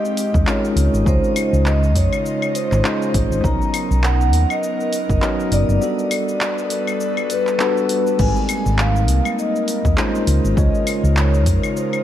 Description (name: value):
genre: sunset chillout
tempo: 101 BPM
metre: 4/4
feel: swing 57% on 16ths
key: unclear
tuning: A4 = 442 Hz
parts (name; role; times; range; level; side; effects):
- vibraphone with soft mallets; melody; 0.0-12.0 s; B4 to A#5; -23 LUFS; left 1 dB; tape echo, shimmer reverb
- tine electric piano; accompaniment; 0.0-12.0 s; F#3 to Eb5; -23 LUFS; equal; auto-pan, shimmer reverb
- airy breathy pad; sustained chords; 0.0-12.0 s; Db3 to Eb5; -27 LUFS; equal; chorus, shimmer reverb
- deep house drum kit; drums; 0.1-12.0 s; cabasa, claves, crash cymbal, handclaps, hi-hat; -26 LUFS; left 1 dB; overdrive, small room ambience
- hollow-body short-scale fingered electric bass; bass; 0.3-11.6 s; F#1 to F2; -16 LUFS; equal; none
- electronic kick drum; drums; 0.3-11.6 s; none; -21 LUFS; equal; overdrive, small room ambience
room: light reverb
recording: dark, warm production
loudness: -16 LUFS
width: side -11 dB against mid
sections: 0.0-12.0 A section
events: none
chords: 0.0 Abmaj9; 0.8 Dbmaj9; 3.4 Bmaj9; 5.8 Gmaj9; 8.2 Abmaj9; 10.3 Dbmaj9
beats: 0.47 | 1.06 1.66 2.25 2.85 | 3.44 4.03 4.63 5.22 | 5.82 6.41 7.00 7.60 | 8.19 8.79 9.38 9.97 | 10.57 11.16 11.76